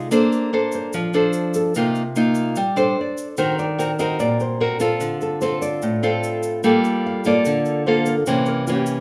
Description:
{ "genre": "bossa nova", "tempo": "147 BPM", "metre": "4/4", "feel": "straight", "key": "unclear", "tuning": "A4 = 440 Hz", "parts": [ { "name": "nylon-string guitar", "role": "accompaniment", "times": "0.0-9.0 s", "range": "A2 to C5", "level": "-21 LUFS", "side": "equal", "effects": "none" }, { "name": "tube shaker", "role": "percussion", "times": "0.1-9.0 s", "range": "none", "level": "-42 LUFS", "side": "equal", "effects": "none" }, { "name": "nylon-string guitar", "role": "melody", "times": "0.7-9.0 s", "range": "G4 to F5", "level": "-27 LUFS", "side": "equal", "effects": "none" } ], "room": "moderate small room reverb, RT60 0.5 s", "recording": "rough home demo mix, studio reverb", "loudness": "-20 LUFS", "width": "mono", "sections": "0.0-3.4 A section; 3.4-9.0 B section", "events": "nylon-string guitar solo 0.0-3.4", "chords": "0.1 Bbmaj9; 1.8 Cm11; 3.0 Amadd11/D; 3.4 Ebm6; 5.0 Dm7; 6.6 Gm9; 8.3 C7b9" }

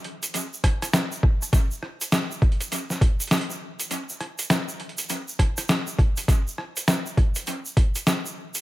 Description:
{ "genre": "glitch hop", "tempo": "101 BPM", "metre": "4/4", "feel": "swing 62% on 16ths", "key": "none", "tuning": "none", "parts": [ { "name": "boom bap sampler-style drum kit", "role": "drums", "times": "0.0-8.6 s", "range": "hi-hat, rim click, snare drum", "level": "-26 LUFS", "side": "equal", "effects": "overdrive, small room ambience, dub echo" }, { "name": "egg shaker", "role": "percussion", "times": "0.2-8.6 s", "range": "none", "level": "-31 LUFS", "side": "right 2 dB", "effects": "none" }, { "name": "electronic kick drum", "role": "drums", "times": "0.6-7.9 s", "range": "none", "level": "-19 LUFS", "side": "equal", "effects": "overdrive, small room ambience" } ], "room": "light reverb, digital ambience", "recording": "echo-heavy mix", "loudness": "-22 LUFS", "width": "side -17 dB against mid", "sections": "0.0-8.6 A section", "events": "none", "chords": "none" }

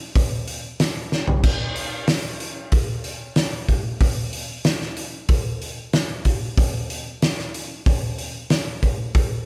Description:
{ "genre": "rock", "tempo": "93 BPM", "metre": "4/4", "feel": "straight", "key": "none", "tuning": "none", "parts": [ { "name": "loose indie drum kit", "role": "drums", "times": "0.2-9.3 s", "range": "crash cymbal, hi-hat, kick drum, snare drum, toms", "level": "-23 LUFS", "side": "equal", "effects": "none" } ], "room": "light reverb", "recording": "band playing live in one room", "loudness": "-23 LUFS", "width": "mono", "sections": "0.0-9.5 A section", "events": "drum fill 1.1-1.4", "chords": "none" }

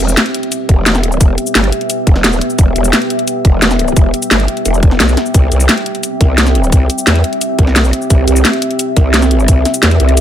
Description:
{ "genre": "dark technical drum and bass", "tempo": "174 BPM", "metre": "4/4", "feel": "straight", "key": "E minor", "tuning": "A4 = 440 Hz", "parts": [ { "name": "deep dark ambient pad", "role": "sustained chords", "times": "0.0-10.2 s", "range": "B3 to E5", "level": "-17 LUFS", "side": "right 1 dB", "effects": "chorus, built-in reverb, sidechain pumping" }, { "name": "growl bass", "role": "bass", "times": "0.0-10.2 s", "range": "E1 to E2", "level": "-13 LUFS", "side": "equal", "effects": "chorus, overdrive, sidechain pumping" }, { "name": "drum and bass drum kit", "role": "drums", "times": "0.0-10.2 s", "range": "cabasa, hi-hat, snare drum", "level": "-14 LUFS", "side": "left 1 dB", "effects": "overdrive" }, { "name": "electronic kick drum", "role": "drums", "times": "0.7-9.6 s", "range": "none", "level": "-8 LUFS", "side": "equal", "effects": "none" } ], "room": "light reverb", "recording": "none", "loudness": "-9 LUFS", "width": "side -10 dB against mid", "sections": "0.0-10.2 A section", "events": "none", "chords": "0.0 Em; 5.3 C" }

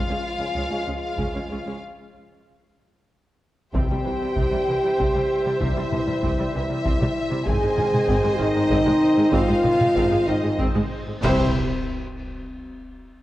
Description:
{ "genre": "cinematic, epic orchestral film score", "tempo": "64 BPM (dotted quarters)", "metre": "6/8", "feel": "straight", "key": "unclear", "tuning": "A4 = 439 Hz", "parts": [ { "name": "rich symphonic violin section", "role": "melody", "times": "0.0-11.6 s", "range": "Eb5 to F5", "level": "-34 LUFS", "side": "left 3 dB", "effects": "none" }, { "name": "rich symphonic violin section", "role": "second line", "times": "0.0-11.6 s", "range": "F4 to Ab5", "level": "-31 LUFS", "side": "left 2 dB", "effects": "none" }, { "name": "dark French horn section", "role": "sustained chords", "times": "0.0-11.5 s", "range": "C4 to Ab4", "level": "-23 LUFS", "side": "equal", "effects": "none" }, { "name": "mellow trombone section", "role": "sustained chords", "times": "0.0-11.5 s", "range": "Eb3 to C4", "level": "-33 LUFS", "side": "right 2 dB", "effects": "none" }, { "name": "dark symphonic viola section", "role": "accompaniment", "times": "0.1-11.6 s", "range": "Eb3 to C5", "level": "-29 LUFS", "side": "equal", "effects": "none" }, { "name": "dark symphonic cello section", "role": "bass", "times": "0.1-11.6 s", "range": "Db2 to C3", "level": "-30 LUFS", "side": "right 1 dB", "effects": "none" }, { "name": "clear symphonic double bass section", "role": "bass", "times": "0.6-11.6 s", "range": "Ab1 to Db2", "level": "-30 LUFS", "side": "right 1 dB", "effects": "none" }, { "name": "taiko ensemble", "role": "drums", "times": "1.2-12.4 s", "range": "none", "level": "-27 LUFS", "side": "equal", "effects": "none" }, { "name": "timpani", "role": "percussion", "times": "3.8-4.6, 11.2-11.5 s", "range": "C3", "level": "-31 LUFS", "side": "left 1 dB", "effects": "none" }, { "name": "cymbal swell, clash cymbals and concert bass drum", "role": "percussion", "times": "7.5-12.4 s", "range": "none", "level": "-32 LUFS", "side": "equal", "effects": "none" } ], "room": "wet scoring stage reverb, RT60 2.0 s", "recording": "worn, warbling old tape, cassette tape, warbly pitch drift", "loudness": "-19 LUFS", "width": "side -15 dB against mid", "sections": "0.0-3.8 A section; 3.8-11.2 B section; 11.2-13.1 C section", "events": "break 1.8-3.8; band accent 11.2-11.9", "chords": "0.0 Db; 1.8 N.C.; 3.8 C; 7.5 Ab; 11.2 C" }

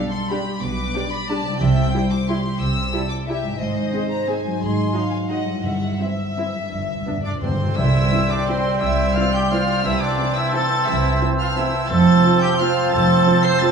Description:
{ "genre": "classical", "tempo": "158-195 BPM", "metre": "3/4", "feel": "rubato", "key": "C major", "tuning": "A4 = 441 Hz", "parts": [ { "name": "warm chamber violin section", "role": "melody", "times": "0.0-13.7 s", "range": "Eb5 to C7", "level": "-28 LUFS", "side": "left 3 dB", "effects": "none" }, { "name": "warm studio violin section", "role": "second line", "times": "0.0-13.7 s", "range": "G4 to C6", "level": "-28 LUFS", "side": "left 1 dB", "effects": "none" }, { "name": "dark studio viola section", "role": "accompaniment", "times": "0.0-13.7 s", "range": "B3 to Ab4", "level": "-30 LUFS", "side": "right 2 dB", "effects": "none" }, { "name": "mellow French horn section", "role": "sustained chords", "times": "0.0-13.7 s", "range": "D3 to E4", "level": "-33 LUFS", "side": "left 2 dB", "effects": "none" }, { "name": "concert harp", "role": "arpeggios", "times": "0.0-13.7 s", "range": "F2 to C6", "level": "-25 LUFS", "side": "left 3 dB", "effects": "none" }, { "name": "dark studio cello section", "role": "bass", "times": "0.6-13.2 s", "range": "F2 to C3", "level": "-24 LUFS", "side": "right 4 dB", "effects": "none" }, { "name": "dark studio double bass section", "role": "bass", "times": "0.6-13.2 s", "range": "F1 to C2", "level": "-27 LUFS", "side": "right 3 dB", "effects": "none" }, { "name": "timpani", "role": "percussion", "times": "1.6-2.1, 5.6-8.3 s", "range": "G2 to C3", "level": "-27 LUFS", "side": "right 1 dB", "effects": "none" }, { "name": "bright trumpet", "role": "stabs", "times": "7.2-13.7 s", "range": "C4 to C5", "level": "-24 LUFS", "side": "equal", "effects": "none" }, { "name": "mellow clarinet", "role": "second line", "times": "7.8-13.7 s", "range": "C4", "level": "-30 LUFS", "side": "right 1 dB", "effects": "none" }, { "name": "silver concert flute", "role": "second line", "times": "7.8-13.7 s", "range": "G5 to A5", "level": "-32 LUFS", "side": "right 3 dB", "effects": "none" }, { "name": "warm oboe", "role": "second line", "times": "7.8-13.7 s", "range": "C5", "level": "-28 LUFS", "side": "right 3 dB", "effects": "none" }, { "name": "mellow bassoon", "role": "accompaniment", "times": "7.8-13.7 s", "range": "E3 to G3", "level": "-24 LUFS", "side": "right 3 dB", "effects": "none" } ], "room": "moderate scoring stage reverb, RT60 2.0 s", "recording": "none", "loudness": "-17 LUFS", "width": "side -6 dB against mid", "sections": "0.0-7.8 A section; 7.8-13.7 B section", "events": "timpani fill 6.7-7.8", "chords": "0.0 G/B; 1.6 C; 3.6 Ab; 4.6 Ab7; 5.6 C/G; 6.7 G; 7.8 C; 9.8 Am/C; 11.9 F" }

